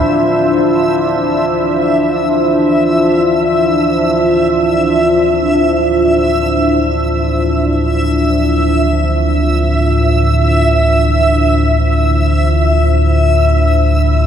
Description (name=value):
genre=dark ambient drone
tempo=free time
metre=none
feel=none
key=D minor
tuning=A4 = 440 Hz
part: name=deep dark ambient pad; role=sustained chords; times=0.0-14.3 s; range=D4 to C5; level=-14 LUFS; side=equal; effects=chorus, built-in reverb
part: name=deep rumbling drone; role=drone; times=0.0-14.3 s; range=D2 to A2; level=-15 LUFS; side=equal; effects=built-in reverb
part: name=backwards swelling texture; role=texture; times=0.0-14.3 s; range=E5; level=-16 LUFS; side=right 1 dB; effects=built-in reverb
room=wet huge ambient reverb, RT60 7.9 s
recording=none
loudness=-10 LUFS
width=side -8 dB against mid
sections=0.1-14.3 A section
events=fade-in on synth drone 0.1-14.3; fade-out on ambient pad 0.1-14.3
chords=0.1 Dmadd9